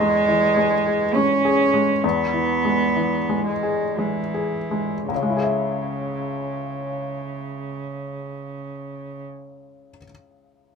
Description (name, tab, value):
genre	neoclassical piano and strings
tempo	53-73 BPM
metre	3/4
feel	rubato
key	C# minor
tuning	A4 = 440 Hz
part	warm cello	second line	0.0-9.2 s	C#3 to C#4	-22 LUFS	right 3 dB	none
part	felt-muted upright piano	accompaniment	0.0-10.8 s	C#2 to E5	-24 LUFS	left 3 dB	none
room	light reverb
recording	minimal, uncompressed stereo recording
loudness	-20 LUFS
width	side -6 dB against mid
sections	0.0-5.1 A section; 5.1-8.5 B section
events	slowing down 0.0-5.1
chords	0.0 C#m/E (rootless); 5.1 C#m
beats	0.27 1.15 | 2.03 2.96 3.99 | 5.10 6.21 7.34